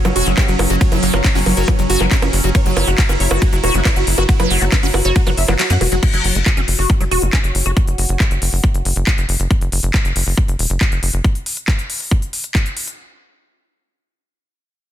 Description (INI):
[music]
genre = psychedelic trance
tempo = 138 BPM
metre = 4/4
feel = straight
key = unclear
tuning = A4 = 438 Hz
[part]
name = dense compressed supersaw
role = melody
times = 0.0-6.0 s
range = F#3 to F#5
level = -23 LUFS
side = equal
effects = phaser, sidechain pumping, tape echo
[part]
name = bubbling stepped-filter texture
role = sustained chords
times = 0.0-6.1 s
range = F#3 to E4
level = -26 LUFS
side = right 1 dB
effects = chorus, built-in reverb, sidechain pumping
[part]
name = liquid acid bass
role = riff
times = 0.0-7.7 s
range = E3 to F#4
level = -22 LUFS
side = equal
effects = phaser, auto-pan, sidechain pumping, tape echo
[part]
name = tight sequencer bass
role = bass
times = 0.0-11.2 s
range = E1 to F#2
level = -18 LUFS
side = equal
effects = tube saturation
[part]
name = drum and bass drum kit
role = drums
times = 0.0-13.0 s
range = bongos, crash cymbal, handclaps, hi-hat, ride cymbal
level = -20 LUFS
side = equal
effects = studio reverb
[part]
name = warbly tape-like pad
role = texture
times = 0.0-9.5 s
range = F#4 to A#5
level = -30 LUFS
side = left 2 dB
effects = chorus, built-in reverb, sidechain pumping
[part]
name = metallic wobble bass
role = second line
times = 0.4-1.4 s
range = A#3 to C#4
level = -34 LUFS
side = left 4 dB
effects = none
[part]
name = electronic kick drum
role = drums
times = 0.4-12.6 s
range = none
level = -15 LUFS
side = equal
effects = studio reverb
[sound]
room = little or no reverb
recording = dense, heavily limited modern master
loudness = -14 LUFS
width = side -11 dB against mid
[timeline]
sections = 0.0-6.0 A section; 6.0-13.0 B section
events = drop 0.0-6.0; kick drops out 5.6-6.0; fade-out on ambient pad 6.0-9.5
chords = 0.0 F#5